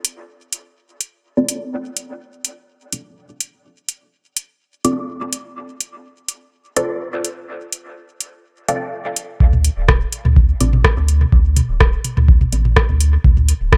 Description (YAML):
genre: dub techno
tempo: 125 BPM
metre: 4/4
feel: straight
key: D minor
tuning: A4 = 440 Hz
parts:
  - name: booming analog drum machine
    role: drums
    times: 0.0-13.8 s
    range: hi-hat, rim click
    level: -21 LUFS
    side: equal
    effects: overdrive
  - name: filtered dub chord stab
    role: stabs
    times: 1.4-12.6 s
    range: C4 to D5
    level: -25 LUFS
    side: equal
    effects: phaser, dub echo
  - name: warm sub bass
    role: bass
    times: 9.4-13.8 s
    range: D1 to D2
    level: -18 LUFS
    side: equal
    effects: sidechain pumping
  - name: electronic kick drum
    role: drums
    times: 9.4-13.8 s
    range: none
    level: -16 LUFS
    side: equal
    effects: overdrive
  - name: electronic toms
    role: percussion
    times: 9.5-13.8 s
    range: none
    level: -25 LUFS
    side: equal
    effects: sidechain pumping on toms
room: light reverb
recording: none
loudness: -17 LUFS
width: mono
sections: 0.0-9.4 A section; 9.4-13.8 B section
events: filter sweep on synth stab 9.4-13.8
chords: 0.0 Dm7; 9.4 D5